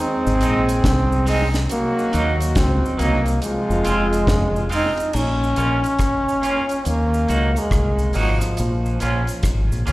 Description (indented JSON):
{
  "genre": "roots reggae",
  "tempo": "70 BPM",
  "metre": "4/4",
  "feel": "swing 63% on 16ths",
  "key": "Bb minor",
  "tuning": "A4 = 439 Hz",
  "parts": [
    { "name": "clear trombone", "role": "melody", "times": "0.0-9.9 s", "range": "F3 to Eb4", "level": "-22 LUFS", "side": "equal", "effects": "tape echo, slapback echo" },
    { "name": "mellow horn section", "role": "second line", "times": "0.0-4.7 s", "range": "F3 to Ab4", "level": "-28 LUFS", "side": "left 1 dB", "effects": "tape echo, slapback echo" },
    { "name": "deep dub fingered electric bass", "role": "bass", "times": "0.3-9.9 s", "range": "F1 to Eb2", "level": "-20 LUFS", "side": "equal", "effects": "none" },
    { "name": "cabasa", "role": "percussion", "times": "0.3-9.9 s", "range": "none", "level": "-38 LUFS", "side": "right 2 dB", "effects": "none" },
    { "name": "clean electric guitar", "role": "accompaniment", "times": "0.4-9.9 s", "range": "Gb3 to Gb4", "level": "-26 LUFS", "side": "right 3 dB", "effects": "tremolo, tape echo, slapback echo" },
    { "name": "deep reggae drum kit", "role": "drums", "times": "0.4-9.9 s", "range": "crash cymbal, hi-hat, kick drum, rim click, snare drum", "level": "-23 LUFS", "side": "equal", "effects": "tape echo" }
  ],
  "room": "light reverb",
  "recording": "live gig heard through the venue's PA, recital hall reverb",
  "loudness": "-17 LUFS",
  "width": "side -18 dB against mid",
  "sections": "0.0-5.1 A section; 5.1-9.9 B section",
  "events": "none",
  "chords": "0.0 Ab; 1.7 Ebm; 3.4 Fm; 5.1 Bbm; 6.9 Ebm; 8.6 Bbm"
}